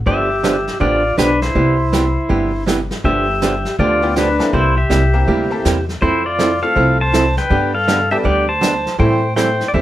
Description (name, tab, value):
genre	country, western swing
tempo	161 BPM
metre	4/4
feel	swing 63% on 8ths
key	C major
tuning	A4 = 440 Hz
part	pedal steel guitar	melody	0.1-9.8 s	D4 to A5	-17 LUFS	left 1 dB	none
part	archtop guitar, miked and amplified	accompaniment	0.1-9.8 s	C3 to A4	-19 LUFS	right 4 dB	none
part	upright bass	bass	0.1-9.8 s	G1 to A2	-20 LUFS	left 1 dB	none
part	vintage brush drum kit	drums	0.1-9.8 s	brushed snare drum, hi-hat, kick drum, snare drum	-23 LUFS	equal	none
part	tack piano	accompaniment	4.0-9.6 s	G3 to A4	-24 LUFS	left 1 dB	none
room	wet club reverb, RT60 0.5 s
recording	none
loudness	-13 LUFS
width	side -13 dB against mid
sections	0.0-9.8 A section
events	none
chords	0.1 G7; 1.6 Cmaj7; 3.0 G7; 4.5 C7; 6.0 Fmaj7; 7.5 G; 9.0 Am7